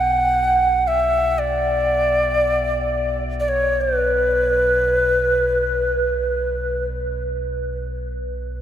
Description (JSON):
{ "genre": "world meditative, free-time meditation music", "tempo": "free time", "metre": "none", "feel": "none", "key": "B minor", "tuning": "A4 = 442 Hz", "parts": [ { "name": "Native American-style cedar flute", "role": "melody", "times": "0.0-6.9 s", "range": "B4 to F#5", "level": "-18 LUFS", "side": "equal", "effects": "none" }, { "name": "deep rumbling drone", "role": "drone", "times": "0.0-8.6 s", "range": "B1", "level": "-27 LUFS", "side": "equal", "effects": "built-in reverb" } ], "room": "wet huge ambient reverb, RT60 7.9 s", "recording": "none", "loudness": "-17 LUFS", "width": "side -10 dB against mid", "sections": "0.0-8.6 A section", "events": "none", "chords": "none", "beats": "free time" }